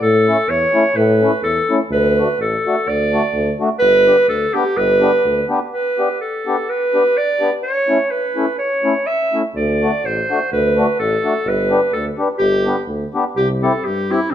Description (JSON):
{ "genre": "alpine folk, alpine dance band", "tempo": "126 BPM", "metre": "2/4", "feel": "swing 54% on 8ths, rubato", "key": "G major", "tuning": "A4 = 439 Hz", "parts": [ { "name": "bright clarinet", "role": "melody", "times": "0.0-14.3 s", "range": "C4 to E5", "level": "-16 LUFS", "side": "right 1 dB", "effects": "none" }, { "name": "warm tuba", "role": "bass", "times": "0.0-5.4, 9.5-14.3 s", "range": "G1 to A2", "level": "-19 LUFS", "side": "equal", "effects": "none" }, { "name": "mellow accordion", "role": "accompaniment", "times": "0.3-14.2 s", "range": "A3 to G4", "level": "-21 LUFS", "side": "left 2 dB", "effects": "none" } ], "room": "wet stone room reverb, RT60 1.3 s", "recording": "band playing live in one room", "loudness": "-14 LUFS", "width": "side -10 dB against mid", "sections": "0.0-5.7 A section; 5.7-13.4 A section", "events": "none", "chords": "0.0 A; 1.9 D; 3.8 G; 7.6 A; 9.5 D; 11.5 G; 13.4 C" }